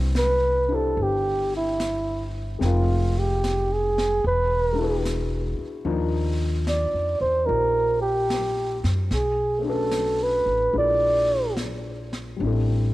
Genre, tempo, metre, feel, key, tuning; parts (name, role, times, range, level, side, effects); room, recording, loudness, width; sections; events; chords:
jazz ballad; 74 BPM; 4/4; swing 66% on 8ths; A4 = 441 Hz
warm concert grand piano; accompaniment; 0.0-12.9 s; F3 to G5; -31 LUFS; left 5 dB; cassette tape
upright bass; bass; 0.0-12.9 s; E1 to F#2; -26 LUFS; equal
breathy flugelhorn; melody; 0.2-11.6 s; E4 to D5; -23 LUFS; right 1 dB; cassette tape
jazz brush drum kit; drums; 0.2-12.9 s; brushed snare drum, hi-hat, snare drum; -36 LUFS; equal; cassette tape
light reverb; home recording on cassette; -21 LUFS; side -17 dB against mid
0.0-12.9 A section
0.0 Cmaj9; 2.6 Fm11; 4.2 E9; 5.9 Ebmaj9; 9.1 Bm7; 10.7 Bb7#11; 12.4 Am7